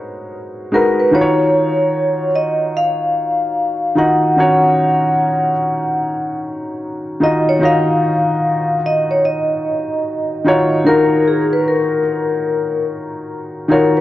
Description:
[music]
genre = lo-fi hip hop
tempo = 74 BPM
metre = 4/4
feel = swing 63% on 16ths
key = Eb minor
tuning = A4 = 440 Hz
[part]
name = felt-muted upright piano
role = accompaniment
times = 0.0-14.0 s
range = Eb3 to Eb5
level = -17 LUFS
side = equal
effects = cassette tape, low-pass filter
[part]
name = vibraphone with medium hard mallets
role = melody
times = 0.7-14.0 s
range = Ab4 to Gb5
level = -16 LUFS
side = left 1 dB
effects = low-pass filter, analog delay
[sound]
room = moderate spring reverb, RT60 2.4 s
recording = cassette tape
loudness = -13 LUFS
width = side -14 dB against mid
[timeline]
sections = 0.0-14.0 A section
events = none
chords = 0.0 Abm9; 1.1 Ebm9

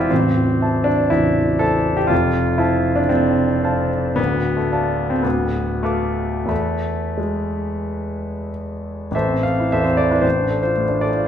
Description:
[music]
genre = classical, romantic character piece for solo piano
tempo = 87-122 BPM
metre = 4/4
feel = rubato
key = A minor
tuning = A4 = 437 Hz
[part]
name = clear concert grand piano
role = solo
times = 0.0-11.3 s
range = A0 to D6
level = -17 LUFS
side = equal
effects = none
[sound]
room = wet large studio reverb, RT60 1.2 s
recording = heard from further back in the room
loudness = -17 LUFS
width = side -9 dB against mid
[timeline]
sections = 0.0-9.1 A section; 9.1-11.3 B section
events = none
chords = 0.1 Am; 2.1 F; 4.2 Dm; 5.2 Bdim/D; 6.5 E; 9.1 Am; 10.2 Dm/A

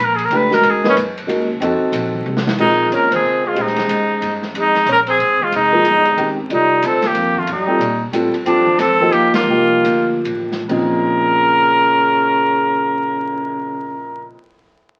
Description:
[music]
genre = modal jazz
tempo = 129-184 BPM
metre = 3/4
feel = swing 62% on 8ths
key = Bb dorian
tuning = A4 = 440 Hz
[part]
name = clear trumpet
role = melody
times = 0.0-14.3 s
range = C#4 to B4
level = -18 LUFS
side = equal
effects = none
[part]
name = upright bass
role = bass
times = 0.0-14.3 s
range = F1 to Bb2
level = -31 LUFS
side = equal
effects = none
[part]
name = open jazz drum kit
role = drums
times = 0.2-13.4 s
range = crash cymbal, cymbal swell, hi-hat, kick drum, ride cymbal, snare drum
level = -29 LUFS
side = equal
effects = none
[part]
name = dark grand piano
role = accompaniment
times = 0.3-14.4 s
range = Bb2 to D5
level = -22 LUFS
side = equal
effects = none
[part]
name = breathy tenor saxophone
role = second line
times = 2.6-14.2 s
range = Db3 to Db4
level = -24 LUFS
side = equal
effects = none
[sound]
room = wet club reverb, RT60 0.7 s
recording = very old 78 rpm record, vinyl crackle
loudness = -16 LUFS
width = mono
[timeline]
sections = 0.0-2.6 A section; 2.6-10.7 B section; 10.7-13.5 C section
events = trumpet solo 0.0-2.6; drum fill 2.3-2.6; band accent 3.1, 9.3; slowing down 8.5-10.7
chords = 0.0 G#m11; 1.6 F7b9; 2.6 Bbm11; 6.5 Cm11; 10.7 Bbm11

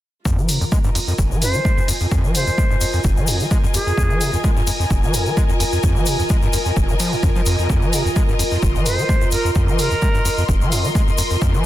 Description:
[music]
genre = acid house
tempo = 129 BPM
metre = 4/4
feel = swing 54% on 16ths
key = F minor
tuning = A4 = 440 Hz
[part]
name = overdriven acid bass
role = riff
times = 0.3-11.7 s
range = F1 to Ab3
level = -21 LUFS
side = equal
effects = distortion
[part]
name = electronic kick drum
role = drums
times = 0.3-11.5 s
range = none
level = -19 LUFS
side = equal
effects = none
[part]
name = tube shaker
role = percussion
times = 0.3-11.6 s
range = none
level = -29 LUFS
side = left 7 dB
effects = none
[part]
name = warm studio string section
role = texture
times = 0.3-11.7 s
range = F4 to C6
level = -24 LUFS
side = equal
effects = sidechain pumping
[part]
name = electronic hi-hat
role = drums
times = 0.5-11.3 s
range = none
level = -26 LUFS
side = right 2 dB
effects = none
[part]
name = bright silver concert flute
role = melody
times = 1.4-4.4, 8.9-10.4 s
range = Ab4 to C5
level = -25 LUFS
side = right 1 dB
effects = dub echo
[sound]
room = light reverb, small room ambience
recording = dense, heavily limited modern master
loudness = -16 LUFS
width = side -14 dB against mid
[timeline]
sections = 0.3-11.7 A section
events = none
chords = 0.3 Fm

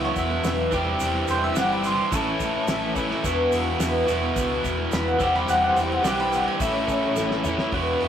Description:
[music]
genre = folk rock and heartland rock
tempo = 107 BPM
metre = 4/4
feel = straight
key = unclear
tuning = A4 = 440 Hz
[part]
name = mandolin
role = second line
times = 0.0-7.2 s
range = C5 to C#6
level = -26 LUFS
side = equal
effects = none
[part]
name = picked steel-string acoustic guitar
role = accompaniment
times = 0.0-8.1 s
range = E2 to G4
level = -29 LUFS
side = left 1 dB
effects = none
[part]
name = dark studio string section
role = sustained chords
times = 0.0-7.7 s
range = F#3 to C#5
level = -32 LUFS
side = left 1 dB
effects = none
[part]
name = biting overdriven guitar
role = riff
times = 0.0-8.1 s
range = E2 to G4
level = -24 LUFS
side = right 1 dB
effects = none
[part]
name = hollow-body short-scale picked electric bass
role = bass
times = 0.0-8.1 s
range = E1 to C#2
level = -32 LUFS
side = equal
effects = none
[part]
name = cloth-damped thuddy drum kit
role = drums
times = 0.2-8.1 s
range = hi-hat, kick drum, snare drum, toms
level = -32 LUFS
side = equal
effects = none
[part]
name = tube shaker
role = percussion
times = 0.2-7.6 s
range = none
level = -40 LUFS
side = right 6 dB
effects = none
[sound]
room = moderate studio reverb, RT60 0.7 s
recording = rough rehearsal-room recording, tube saturation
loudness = -21 LUFS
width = side -9 dB against mid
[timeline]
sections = 0.0-7.7 A section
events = mandolin solo 0.0-7.7; drum fill 7.2-7.7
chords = 0.0 Esus2; 0.7 C/E; 2.1 A; 3.2 Esus2; 5.2 C/E; 6.6 A

